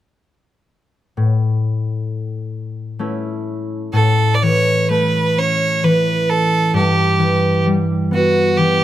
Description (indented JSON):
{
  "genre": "celtic folk, Celtic slow air",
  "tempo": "61-68 BPM",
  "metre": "3/4",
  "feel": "rubato",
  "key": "A mixolydian",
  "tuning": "A4 = 438 Hz",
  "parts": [
    { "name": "concert harp", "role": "accompaniment", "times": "1.2-8.8 s", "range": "G2 to E4", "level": "-16 LUFS", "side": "left 1 dB", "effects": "none" },
    { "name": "clear fiddle", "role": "melody", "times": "3.9-8.8 s", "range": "F#4 to D5", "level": "-17 LUFS", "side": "right 2 dB", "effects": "none" }
  ],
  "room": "light reverb",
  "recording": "close, detailed microphones",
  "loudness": "-14 LUFS",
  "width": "side -12 dB against mid",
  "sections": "1.2-3.9 A section; 3.9-8.8 B section",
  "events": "none",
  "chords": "1.2 A; 6.7 Em/G"
}